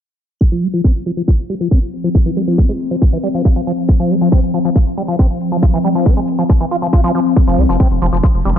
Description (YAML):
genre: psychedelic trance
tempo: 138 BPM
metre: 4/4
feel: straight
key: F minor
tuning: A4 = 440 Hz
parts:
  - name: evolving wavetable pad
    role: sustained chords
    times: 1.9-8.6 s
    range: F3 to C4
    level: -18 LUFS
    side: left 2 dB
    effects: phaser, built-in reverb, vintage 12-bit sampler grit, sidechain pumping
  - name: electronic hi-hat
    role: drums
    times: 0.4-8.6 s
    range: none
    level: -51 LUFS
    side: right 2 dB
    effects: none
  - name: electronic kick drum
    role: drums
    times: 0.4-8.3 s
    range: none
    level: -11 LUFS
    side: equal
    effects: studio reverb
  - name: liquid acid bass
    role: riff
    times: 0.5-8.6 s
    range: E3 to F4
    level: -19 LUFS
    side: equal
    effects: chorus, auto-pan, sidechain pumping, ping-pong delay
  - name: round analog bass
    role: bass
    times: 7.5-8.6 s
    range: F1 to C2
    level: -15 LUFS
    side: equal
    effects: none
  - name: vowel-sweep wobble bass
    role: second line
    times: 7.6-8.6 s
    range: C4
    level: -29 LUFS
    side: left 1 dB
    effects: none
room: light reverb, digital ambience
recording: low-pass filter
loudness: -12 LUFS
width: side -9 dB against mid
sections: 0.4-8.6 A section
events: filter sweep on acid bass 0.4-8.6; filter sweep on ambient pad 0.4-8.6; filter sweep 0.4-8.6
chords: 0.4 F5